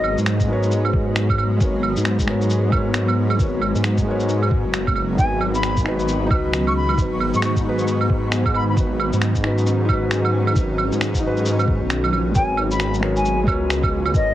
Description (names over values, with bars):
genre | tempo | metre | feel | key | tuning
future garage | 134 BPM | 4/4 | swing 61% on 16ths | G# minor | A4 = 439 Hz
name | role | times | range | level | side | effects
silver concert flute | melody | 0.0-0.2, 5.2-8.7, 12.4-14.3 s | D#5 to C#6 | -26 LUFS | left 2 dB | analog delay
felt-muted upright piano | accompaniment | 0.0-14.3 s | G#3 to C#5 | -24 LUFS | left 1 dB | vintage 12-bit sampler grit, sidechain pumping, tape echo
granular cloud pad | sustained chords | 0.0-14.3 s | D#3 to C#4 | -26 LUFS | equal | built-in reverb, sidechain pumping
swelling detuned saw bass | bass | 0.0-14.3 s | F#1 to G#2 | -22 LUFS | equal | sidechain pumping
electronic claves, shaker and finger snaps | drums | 0.0-14.3 s | none | -25 LUFS | right 3 dB | none
electronic kick drum | drums | 0.4-14.2 s | none | -22 LUFS | equal | none
room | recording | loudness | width
digital ambience | heavily compressed radio sound, cassette tape | -17 LUFS | side -13 dB against mid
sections
0.0-12.4 A section; 12.4-14.3 A section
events
kick drops out 11.9-12.4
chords
0.0 G#m11; 5.2 B/G#; 12.4 G#m11